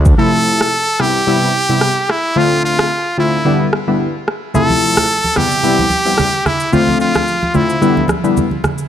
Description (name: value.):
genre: afrobeats.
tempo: 110 BPM.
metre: 4/4.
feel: swing 55% on 16ths.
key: unclear.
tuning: A4 = 440 Hz.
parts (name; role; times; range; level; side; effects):
afro-pop drum kit; drums; 0.1-8.9 s; kick drum, rim click, shaker; -18 LUFS; equal; none.
brilliant trumpet; melody; 0.2-8.1 s; E4 to A4; -16 LUFS; right 1 dB; ping-pong delay.
glassy digital keys; accompaniment; 0.2-8.4 s; C3 to F4; -15 LUFS; left 2 dB; chorus.
congas; percussion; 4.6-8.8 s; none; -20 LUFS; right 3 dB; none.
room: light reverb, digital ambience.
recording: none.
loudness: -12 LUFS.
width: side -10 dB against mid.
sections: 0.2-8.9 A section.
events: none.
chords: 0.2 Fmaj7; 1.0 Cmaj7; 2.4 Dm7; 3.5 Em7; 4.5 Fmaj7; 5.4 Cmaj7; 6.7 Dm7; 7.8 Em7.